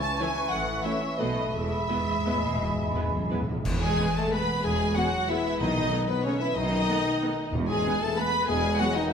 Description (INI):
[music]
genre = classical, orchestral ballroom waltz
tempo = 160-205 BPM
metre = 3/4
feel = rubato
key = E major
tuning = A4 = 441 Hz
[part]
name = warm studio violin section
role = melody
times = 0.0-9.1 s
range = B4 to B5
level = -31 LUFS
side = left 2 dB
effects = none
[part]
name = mellow clarinet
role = second line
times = 0.0-9.1 s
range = B3 to C#5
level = -35 LUFS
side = left 2 dB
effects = none
[part]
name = mellow hollow flute section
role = second line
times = 0.0-9.1 s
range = B4 to C#6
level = -33 LUFS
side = right 2 dB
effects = none
[part]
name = warm bassoon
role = accompaniment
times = 0.0-3.4 s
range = E3 to A3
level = -35 LUFS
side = equal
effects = none
[part]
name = dark symphonic violin section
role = second line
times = 0.2-9.1 s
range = B3 to C#5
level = -35 LUFS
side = left 2 dB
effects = none
[part]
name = rich symphonic viola section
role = accompaniment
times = 0.2-8.9 s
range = E3 to E4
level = -35 LUFS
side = right 2 dB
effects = none
[part]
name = dark French horn section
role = sustained chords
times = 0.2-9.1 s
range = B2 to C#4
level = -32 LUFS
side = left 3 dB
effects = none
[part]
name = rich symphonic cello section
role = bass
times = 0.5-8.7 s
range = E2 to B2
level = -35 LUFS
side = right 2 dB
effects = none
[part]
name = rich symphonic double bass section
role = bass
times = 0.5-8.7 s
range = E1 to B1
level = -35 LUFS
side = right 2 dB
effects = none
[part]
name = timpani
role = percussion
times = 1.5-8.0 s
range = E2 to B2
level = -33 LUFS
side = left 1 dB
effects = none
[part]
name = mellow tuba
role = bass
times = 3.6-8.7 s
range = E1 to B1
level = -36 LUFS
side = right 2 dB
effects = none
[part]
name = clash cymbals and concert bass drum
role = percussion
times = 3.7-4.3 s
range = none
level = -35 LUFS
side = equal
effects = none
[sound]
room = wet recital hall reverb, RT60 1.5 s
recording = recorded in a church or concert hall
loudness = -24 LUFS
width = side -7 dB against mid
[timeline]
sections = 0.0-3.6 A section; 3.6-9.1 B section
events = timpani fill 1.5-3.6; band accent 3.6-4.0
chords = 0.0 C#m; 0.5 A; 1.2 B7; 1.5 E; 5.6 B7; 7.5 E